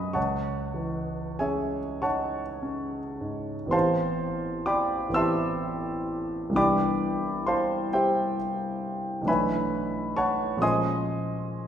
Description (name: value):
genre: classical, impressionist solo piano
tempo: 30-45 BPM (dotted quarters)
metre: 6/8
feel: rubato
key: C# minor, A minor from 3.7 s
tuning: A4 = 442 Hz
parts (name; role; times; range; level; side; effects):
- warm concert grand piano; solo; 0.0-11.7 s; A1 to F#6; -25 LUFS; equal; none
room: wet scoring stage reverb, RT60 1.8 s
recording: heard from further back in the room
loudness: -25 LUFS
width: side -9 dB against mid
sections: 0.0-3.7 A section; 3.7-11.7 B section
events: none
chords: 0.2 C#madd9; 3.7 Am9; 6.6 Cmaj9; 9.3 Bm11; 10.6 Bbm11